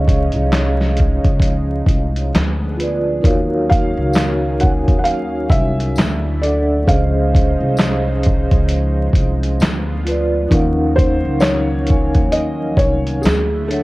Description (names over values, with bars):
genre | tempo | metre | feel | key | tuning
lo-fi hip hop | 66 BPM | 4/4 | swing 59% on 16ths | Eb dorian | A4 = 440 Hz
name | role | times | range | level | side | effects
felt-muted upright piano | melody | 0.0-13.8 s | Ab4 to Gb5 | -22 LUFS | equal | none
vibraphone with soft mallets | accompaniment | 0.0-13.8 s | Db4 to Ab5 | -20 LUFS | equal | none
lush unison pad | sustained chords | 0.0-13.8 s | D3 to C5 | -27 LUFS | equal | chorus
upright bass | bass | 0.0-13.8 s | C2 to Eb2 | -19 LUFS | equal | none
lo-fi sampler-style drum kit | drums | 0.1-13.8 s | handclaps, hi-hat, kick drum, snare drum | -16 LUFS | equal | vintage 12-bit sampler grit
tambourine | percussion | 4.1-13.5 s | none | -40 LUFS | left 4 dB | none
room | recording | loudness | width
light reverb, studio ambience | vinyl crackle | -14 LUFS | side -20 dB against mid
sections
0.0-13.8 A section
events
none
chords
0.0 Dbmaj9; 2.3 Ddim7; 3.2 Ebm9; 6.0 Dadd9; 6.9 Dbmaj9; 9.6 Ddim7; 10.5 Ebm9; 13.2 Dmaj9